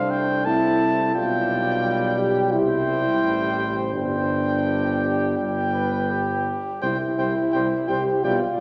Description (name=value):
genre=classical, brass quintet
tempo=82-87 BPM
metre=4/4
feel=rubato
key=C major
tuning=A4 = 440 Hz
part: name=clear trumpet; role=melody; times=0.0-8.4 s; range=F5 to A5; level=-29 LUFS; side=equal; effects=none
part: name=mellow flugelhorn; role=second line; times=0.0-8.4 s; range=G4 to D5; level=-31 LUFS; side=equal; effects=none
part: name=mellow French horn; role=accompaniment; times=0.0-8.6 s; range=D4 to G4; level=-26 LUFS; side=equal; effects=none
part: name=warm trombone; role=accompaniment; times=0.0-8.6 s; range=G3 to C4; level=-34 LUFS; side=equal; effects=none
part: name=warm tuba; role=bass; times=0.0-8.4 s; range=G1 to C2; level=-30 LUFS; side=equal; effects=none
room=wet church reverb, RT60 2.8 s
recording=none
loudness=-22 LUFS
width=mono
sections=0.0-8.6 A section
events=none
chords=0.0 D7(no3)/C; 1.2 G7/B; 2.5 C; 3.9 Gsus4; 6.8 C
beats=0.46 | 1.15 1.84 2.53 3.23 | 3.93 4.65 5.38 6.11 | 6.83 7.54 8.24